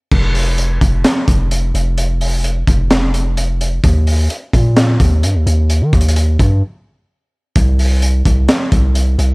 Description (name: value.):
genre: hip hop, trap.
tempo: 129 BPM.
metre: 4/4.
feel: half-time.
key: unclear.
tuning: A4 = 437 Hz.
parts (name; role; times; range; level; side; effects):
long sustained 808-style bass; bass; 0.1-9.3 s; F1 to Eb3; -13 LUFS; equal; none.
crunchy breakbeat drum kit; drums; 0.1-9.3 s; crash cymbal, handclaps, hi-hat, kick drum, snare drum; -15 LUFS; equal; none.
room: little or no reverb.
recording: dry, gritty hardware recording.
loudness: -12 LUFS.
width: side -31 dB against mid.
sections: 0.1-9.3 A section.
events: break 6.6-7.6.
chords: none.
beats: | 0.12 0.58 1.05 1.51 | 1.98 2.44 2.91 3.37 | 3.84 4.30 4.77 5.23 | 5.70 6.16 6.63 7.09 | 7.56 8.02 8.49 8.95.